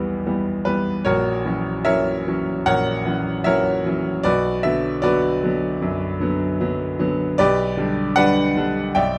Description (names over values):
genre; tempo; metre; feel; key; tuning
classical, romantic character piece for solo piano; 76 BPM; 4/4; rubato; B minor; A4 = 440 Hz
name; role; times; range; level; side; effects
bright grand piano; solo; 0.0-9.2 s; A#1 to G5; -21 LUFS; equal; none
room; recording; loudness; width
light reverb; close, detailed microphones; -21 LUFS; mono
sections
0.0-9.2 A section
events
none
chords
0.0 Em/B; 1.1 F#7/A#; 4.2 Bm; 7.4 G/B